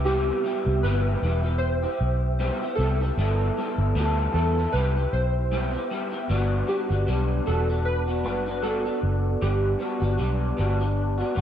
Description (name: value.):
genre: indie pop, bedroom pop.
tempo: 77 BPM.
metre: 4/4.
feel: swing 55% on 16ths.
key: unclear.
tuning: A4 = 440 Hz.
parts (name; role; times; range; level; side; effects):
warbly lo-fi synth keys; melody; 0.0-11.4 s; G4 to C5; -29 LUFS; right 1 dB; ensemble chorus, slapback echo.
electric guitar through a small old amp; accompaniment; 0.0-11.4 s; C3 to A4; -28 LUFS; left 2 dB; ensemble chorus, vibrato effect.
vintage muted fingered electric bass; bass; 0.0-11.4 s; E1 to E2; -24 LUFS; equal; none.
room: light reverb.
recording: dark, warm production.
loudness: -22 LUFS.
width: side -10 dB against mid.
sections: 0.0-6.3 A section; 6.3-11.4 B section.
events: none.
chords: 0.0 Cmaj7; 3.2 G69; 4.7 Cmaj7; 6.3 Gmaj7.